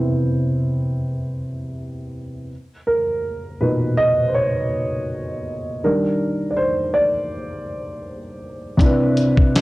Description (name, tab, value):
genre	lo-fi hip hop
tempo	81 BPM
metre	4/4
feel	swing 55% on 16ths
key	unclear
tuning	A4 = 440 Hz
part	dark upright piano	accompaniment	0.0-9.6 s	A#2 to D#5	-19 LUFS	equal	cassette tape, plate reverb
part	dusty soul sampler-style drum kit	drums	8.8-9.6 s	hi-hat, kick drum, snare drum	-15 LUFS	left 1 dB	none
room	wet studio reverb, RT60 0.5 s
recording	dark, warm production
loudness	-18 LUFS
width	side -19 dB against mid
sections	0.0-8.8 A section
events	upright piano solo 0.0-8.8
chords	0.0 Cmaj7; 2.5 Bmaj9; 5.8 Ebmaj7; 8.8 Cmaj9